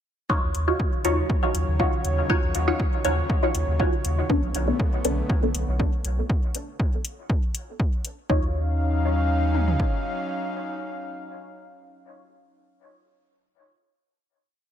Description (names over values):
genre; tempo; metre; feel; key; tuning
dub techno; 120 BPM; 4/4; straight; Eb minor; A4 = 440 Hz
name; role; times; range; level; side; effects
airy breathy pad; sustained chords; 0.3-12.2 s; Db3 to F5; -31 LUFS; left 1 dB; chorus, vintage 12-bit sampler grit, sidechain pumping
filtered dub chord stab; stabs; 0.3-12.2 s; B3 to Db5; -27 LUFS; equal; phaser, sidechain pumping, dub echo
deep house drum kit; drums; 0.3-9.9 s; kick drum, toms; -24 LUFS; equal; overdrive
soft dub sub bass; bass; 0.4-9.8 s; B1 to Eb2; -25 LUFS; equal; sidechain pumping
electronic hi-hat; drums; 0.5-8.2 s; none; -32 LUFS; left 4 dB; none
room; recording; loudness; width
light reverb; echo-heavy mix; -22 LUFS; side -10 dB against mid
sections
0.3-8.3 groove; 8.3-12.3 final chord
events
filter sweep on synth stab 0.3-6.3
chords
0.3 Ebm9; 4.3 Bm9; 8.3 Ebm9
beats
| 0.30 0.80 1.30 1.80 | 2.30 2.80 3.30 3.80 | 4.30 4.80 5.30 5.80 | 6.30 6.80 7.30 7.80 | 8.30 8.80 9.30 9.80 | 10.30 10.80 11.30 11.80